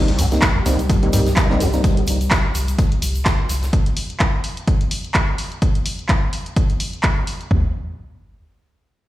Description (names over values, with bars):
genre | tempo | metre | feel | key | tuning
acid house | 127 BPM | 4/4 | swing 56% on 16ths | C minor | A4 = 440 Hz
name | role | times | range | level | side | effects
dark analog pad | sustained chords | 0.5-3.7 s | G3 to G4 | -27 LUFS | left 1 dB | chorus, sidechain pumping
overdriven acid bass | riff | 0.0-1.7 s | C2 to G2 | -22 LUFS | equal | distortion, analog chorus, sidechain pumping, digital delay
percussive organ stab | stabs | 0.0-1.8 s | G3 to Eb4 | -23 LUFS | equal | chorus, digital delay
huge arena drum kit | drums | 0.1-3.7 s | hi-hat, snare drum | -34 LUFS | left 1 dB | sidechain pumping on hats, high-pass filter on hats, high-pass filter on snare, high-pass filter on room
punchy analog drum machine | drums | 0.1-7.5 s | handclaps, hi-hat | -24 LUFS | equal | none
saturated sub bass | bass | 0.2-3.7 s | C2 | -20 LUFS | equal | sidechain pumping
tube shaker | percussion | 0.2-3.7 s | none | -35 LUFS | right 2 dB | none
punchy analog drum machine | drums | 0.4-7.6 s | kick drum, toms | -18 LUFS | equal | none
room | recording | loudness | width
light reverb, studio reverb | played on a big sound system in a bare room, large studio reverb | -16 LUFS | side -15 dB against mid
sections
0.0-7.5 A section; 7.5-9.1 B section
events
none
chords
0.0 Cm7; 3.7 N.C.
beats
0.42 0.90 1.37 | 1.84 2.31 2.79 3.26 | 3.73 4.20 4.67 5.15 | 5.62 6.09 6.56 7.04 | 7.51